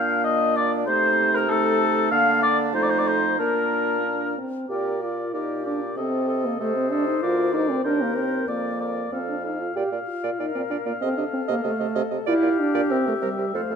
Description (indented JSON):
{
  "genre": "quick classical-period movement for wind quintet",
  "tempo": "95 BPM",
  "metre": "2/4",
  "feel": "straight",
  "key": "Bb major",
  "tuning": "A4 = 440 Hz",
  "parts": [
    { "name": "concert flute", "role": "melody", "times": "0.0-13.8 s", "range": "G4 to F5", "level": "-29 LUFS", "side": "left 9 dB", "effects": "none" },
    { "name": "mellow oboe", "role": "second line", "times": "0.0-13.8 s", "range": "A4 to F5", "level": "-25 LUFS", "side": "left 3 dB", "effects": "none" },
    { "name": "clear clarinet", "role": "accompaniment", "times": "0.0-13.8 s", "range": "D4 to Eb5", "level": "-30 LUFS", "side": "right 11 dB", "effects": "none" },
    { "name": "mellow French horn", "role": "accompaniment", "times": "0.0-13.8 s", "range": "G3 to G4", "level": "-26 LUFS", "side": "right 1 dB", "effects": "none" },
    { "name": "warm bassoon", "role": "bass", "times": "0.0-13.8 s", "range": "D2 to D3", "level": "-30 LUFS", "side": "right 4 dB", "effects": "none" }
  ],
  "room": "moderate scoring stage reverb, RT60 2.0 s",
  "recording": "close, detailed microphones",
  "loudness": "-21 LUFS",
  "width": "side -6 dB against mid",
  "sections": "0.0-4.7 A section; 4.7-13.8 A section",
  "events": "none",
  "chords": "0.0 Bb; 0.9 Cm6; 2.1 Bb/D; 2.8 F7; 3.4 Bb; 6.0 Cm69; 7.2 Bb/D; 7.8 Cm7/Eb; 8.5 Bb/F; 9.1 F; 9.8 Bb; 11.0 F7/C; 12.3 Gm7/Bb; 12.9 C7",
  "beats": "0.25 | 0.88 1.50 | 2.12 2.75 | 3.40 4.05 | 4.70 5.34 | 5.97 6.60 | 7.22 7.84 | 8.48 9.12 | 9.76 10.39 | 11.02 11.64 | 12.27 12.90 | 13.54"
}